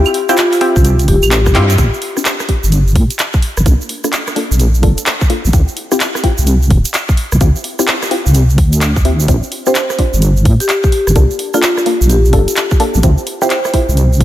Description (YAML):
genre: UK garage, two-step garage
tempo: 128 BPM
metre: 4/4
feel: swing 64% on 16ths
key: D minor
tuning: A4 = 442 Hz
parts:
  - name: punchy chord stab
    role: stabs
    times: 0.0-14.2 s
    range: Bb3 to A4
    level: -18 LUFS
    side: left 1 dB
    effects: chorus, tape echo
  - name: deep soft wobble bass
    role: bass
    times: 0.0-14.2 s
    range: D1 to Bb2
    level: -11 LUFS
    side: equal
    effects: chorus, tube saturation
  - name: garage drum kit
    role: drums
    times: 0.1-14.2 s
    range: claves, handclaps, hi-hat, rim click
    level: -19 LUFS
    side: equal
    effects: none
  - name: tube shaker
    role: percussion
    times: 0.1-14.2 s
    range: none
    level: -24 LUFS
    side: right 5 dB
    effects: none
  - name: marimba with medium mallets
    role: melody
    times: 0.3-1.3, 9.7-13.6 s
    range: F4 to C5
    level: -17 LUFS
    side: left 1 dB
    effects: tape echo
  - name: electronic kick drum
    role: drums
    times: 0.8-14.2 s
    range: none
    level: -13 LUFS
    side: equal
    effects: none
room: light reverb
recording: none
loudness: -10 LUFS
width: side -13 dB against mid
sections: 0.0-1.8 A section; 1.8-14.2 B section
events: drop 0.0-1.8; drum fill 1.5; band accent 1.5; filter sweep on synth stab 1.8-14.2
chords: 0.0 Dm11 (rootless); 1.8 Bb69; 3.7 C9sus4 (rootless); 5.5 Dm11; 9.3 Bb69; 11.2 C9sus4 (rootless); 13.0 Dm11 (rootless)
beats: 0.38 0.85 1.31 | 1.78 2.25 2.72 3.19 | 3.66 4.13 4.60 5.07 | 5.53 6.00 6.47 6.94 | 7.41 7.88 8.35 8.81 | 9.28 9.75 10.22 10.69 | 11.16 11.63 12.10 12.56 | 13.03 13.50 13.97